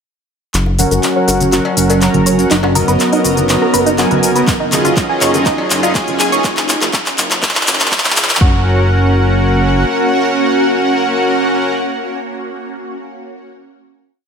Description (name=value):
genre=progressive house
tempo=122 BPM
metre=4/4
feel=straight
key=F# major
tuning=A4 = 438 Hz
part: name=shimmering ambient pad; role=sustained chords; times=1.7-11.7 s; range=F#3 to A#4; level=-20 LUFS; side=right 1 dB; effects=chorus, built-in reverb, phaser, sidechain pumping
part: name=fat analog bass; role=bass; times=0.5-9.8 s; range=F#1 to C#2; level=-17 LUFS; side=equal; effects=sidechain pumping
part: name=deep house drum kit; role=drums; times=0.5-8.4 s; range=handclaps, hi-hat, shaker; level=-16 LUFS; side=left 1 dB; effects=small room ambience, sidechain pumping on hats, sidechain pumping on perc
part: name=tight sequenced synth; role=arpeggios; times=0.7-8.6 s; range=D#4 to F#5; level=-19 LUFS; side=right 1 dB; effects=chorus, phaser, sidechain pumping, tape echo
part: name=bongos, congas and cowbell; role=percussion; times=0.7-6.2 s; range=none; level=-23 LUFS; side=left 4 dB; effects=sidechain pumping on perc
part: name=soft supersaw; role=stabs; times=0.8-11.7 s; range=F#3 to A#5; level=-15 LUFS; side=equal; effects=sidechain pumping, low-pass filter, tape echo
part: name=electronic kick drum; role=drums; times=4.5-8.5 s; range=none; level=-16 LUFS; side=equal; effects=small room ambience
room=moderate lush hall reverb, RT60 1.7 s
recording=high-pass filter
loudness=-11 LUFS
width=side -6 dB against mid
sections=0.5-8.4 build; 8.4-12.3 final chord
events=build-up 0.5-8.4; drum fill 0.5-8.4; filter sweep on synth arpeggio sound 0.5-6.4; filter sweep on supersaw synth 0.5-6.4; filter sweep on ambient pad 0.5-6.4; filter sweep 0.5-8.4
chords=0.5 F#; 2.5 Bmaj7/F#; 4.5 C#add9/F#; 6.4 F#5; 8.4 F#